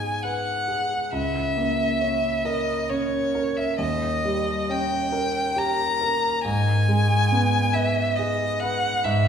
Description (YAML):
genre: classical, romantic duo for violin and grand piano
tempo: 68 BPM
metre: 3/4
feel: rubato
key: G# minor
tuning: A4 = 438 Hz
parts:
  - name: clear violin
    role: melody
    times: 0.0-9.3 s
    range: C#5 to A#5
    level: -24 LUFS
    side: left 1 dB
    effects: none
  - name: clear grand piano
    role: accompaniment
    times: 0.0-9.3 s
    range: C#2 to B4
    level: -24 LUFS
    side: right 1 dB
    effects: none
room: wet scoring stage reverb, RT60 1.6 s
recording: heard from further back in the room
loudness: -21 LUFS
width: side -7 dB against mid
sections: 0.0-9.3 A section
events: none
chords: 0.0 G#m; 1.1 A#dim/C#; 3.8 D#7; 6.5 G#m